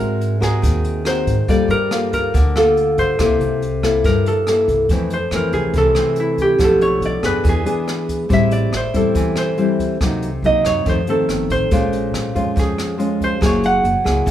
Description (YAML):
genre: bossa nova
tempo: 141 BPM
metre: 4/4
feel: straight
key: F major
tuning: A4 = 441 Hz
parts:
  - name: concert harp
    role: melody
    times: 0.0-14.3 s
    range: C4 to Gb5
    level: -19 LUFS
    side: right 2 dB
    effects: none
  - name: nylon-string guitar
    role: accompaniment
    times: 0.0-14.3 s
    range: F2 to Bb4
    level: -19 LUFS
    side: left 2 dB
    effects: none
  - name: upright bass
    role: bass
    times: 0.0-14.3 s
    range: Gb1 to Ab2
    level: -22 LUFS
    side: equal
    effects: none
  - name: jazz brush drum kit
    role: drums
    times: 0.0-14.3 s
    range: hi-hat, kick drum, rim click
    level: -23 LUFS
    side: equal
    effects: none
room: moderate large studio reverb, RT60 0.9 s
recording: band playing live in one room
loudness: -15 LUFS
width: side -11 dB against mid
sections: 0.0-4.9 A section; 4.9-14.3 B section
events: harp solo 4.9-14.3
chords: 0.0 Ab9; 1.5 Gm9; 3.2 C6; 4.9 Fmaj7; 6.6 Bm7b5; 7.4 E7; 8.3 Am7; 10.0 Cm7b5; 10.9 F7; 11.7 Bbm7; 13.4 Gb9